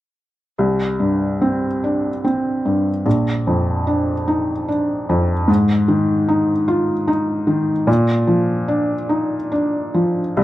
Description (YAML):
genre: classical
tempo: 74 BPM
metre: 3/4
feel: rubato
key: unclear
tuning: A4 = 440 Hz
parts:
  - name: felt-muted upright piano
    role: accompaniment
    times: 0.6-10.4 s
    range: Bb1 to F4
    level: -16 LUFS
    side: equal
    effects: none
room: moderate studio reverb, RT60 0.6 s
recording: dry, close 1970s-style studio recording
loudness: -16 LUFS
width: side -15 dB against mid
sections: 0.6-10.4 A section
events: none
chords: 0.6 C5; 3.1 Bb; 5.5 Fm7/Ab; 7.9 Bbadd11